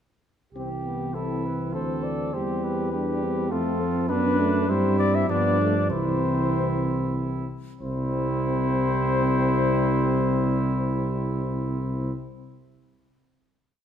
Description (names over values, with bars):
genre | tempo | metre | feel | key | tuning
classical, brass quintet | 92-104 BPM | 3/4 | rubato | C major | A4 = 439 Hz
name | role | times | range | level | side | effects
warm trumpet | second line | 0.5-12.1 s | D4 to A4 | -31 LUFS | right 5 dB | none
dark trombone | accompaniment | 0.5-12.1 s | E3 to C4 | -30 LUFS | right 2 dB | none
mellow tuba | bass | 0.5-12.1 s | C2 to G2 | -26 LUFS | right 2 dB | none
dark cornet | melody | 0.6-12.1 s | G4 to E5 | -29 LUFS | left 6 dB | none
warm French horn | accompaniment | 0.6-12.1 s | A3 to D4 | -31 LUFS | left 6 dB | none
room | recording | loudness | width
moderate scoring stage reverb, RT60 1.7 s | none | -22 LUFS | side -9 dB against mid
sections
0.6-7.8 A section; 7.8-11.6 final chord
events
slowing down 3.2-7.8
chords
0.6 C; 2.3 C/E; 3.5 F; 4.1 D/F#; 4.7 C/G; 5.3 G9; 5.9 C